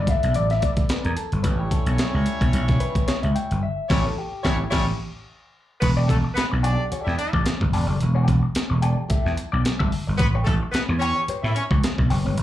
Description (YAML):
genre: funk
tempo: 110 BPM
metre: 4/4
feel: swing 56% on 16ths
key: E dorian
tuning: A4 = 440 Hz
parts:
  - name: clear horn section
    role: second line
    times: 0.0-11.6 s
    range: G3 to E5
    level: -28 LUFS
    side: equal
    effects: slapback echo
  - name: clean electric guitar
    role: accompaniment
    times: 0.0-12.4 s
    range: G4 to G5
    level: -29 LUFS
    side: left 4 dB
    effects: wah, slapback echo
  - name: vintage slap bass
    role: bass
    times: 0.0-12.4 s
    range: E1 to A2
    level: -22 LUFS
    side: equal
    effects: none
  - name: breakbeat sampler-style drum kit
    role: drums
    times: 0.1-12.4 s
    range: crash cymbal, hi-hat, kick drum, snare drum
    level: -24 LUFS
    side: equal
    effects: none
room: little or no reverb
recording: live gig heard through the venue's PA, club reverb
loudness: -20 LUFS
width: side -13 dB against mid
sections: 0.0-5.8 A section; 5.8-12.4 B section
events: clean electric guitar solo 0.0-5.8; band accent 3.6-5.8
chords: 0.0 E7sus4; 1.4 A9; 5.8 Em11; 10.2 A9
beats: 0.35 0.90 | 1.44 1.99 2.54 3.08 | 3.63 4.18 4.72 5.27 | 5.82 6.36 6.91 7.46 | 8.00 8.55 9.10 9.64 | 10.19 10.74 11.28 11.83 | 12.38